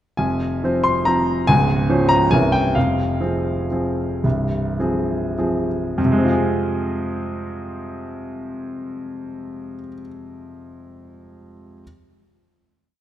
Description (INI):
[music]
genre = classical, piano waltz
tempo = 91-150 BPM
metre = 3/4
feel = rubato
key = F minor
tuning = A4 = 440 Hz
[part]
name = clear concert grand piano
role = solo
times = 0.2-11.8 s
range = C1 to C6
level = -19 LUFS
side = equal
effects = none
[sound]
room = moderate concert hall reverb, RT60 2.0 s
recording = none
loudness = -17 LUFS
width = side -12 dB against mid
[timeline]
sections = 0.2-6.0 A section; 6.0-9.7 final chord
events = slowing down 2.1-6.0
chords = 0.2 Fm; 1.5 Dbmaj7; 2.3 C7b9; 2.8 Fm